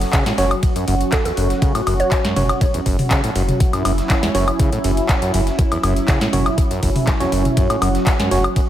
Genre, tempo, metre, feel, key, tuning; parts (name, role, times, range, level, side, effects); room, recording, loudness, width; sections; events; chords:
acid house; 121 BPM; 4/4; straight; A4 = 440 Hz
warm analog pad; sustained chords; 0.0-8.7 s; F#3 to F#4; -22 LUFS; right 1 dB; chorus, sidechain pumping
saturated sub bass; bass; 0.0-8.5 s; F#1; -22 LUFS; equal; sidechain pumping
booming analog drum machine; drums; 0.0-8.7 s; handclaps, hi-hat, snare drum, toms, woodblock; -22 LUFS; left 1 dB
breakbeat sampler-style drum kit; drums; 0.0-8.7 s; ride cymbal, snare drum; -35 LUFS; right 2 dB; sidechain pumping on cymbals, high-pass filter on cymbals, high-pass filter on snare
overdriven acid bass; riff; 0.1-8.6 s; E2 to C#3; -24 LUFS; equal; sidechain pumping, ping-pong delay
electronic kick drum; drums; 0.1-8.7 s; -18 LUFS; equal
tine electric piano; stabs; 0.4-8.5 s; C#4 to C#5; -25 LUFS; right 3 dB; ping-pong delay
mallet-like synth pluck; melody; 1.1-2.2 s; A4 to C#5; -25 LUFS; right 2 dB; chorus, digital delay
light reverb, digital ambience; -15 LUFS; side -12 dB against mid
0.0-8.7 A section
0.0 F#5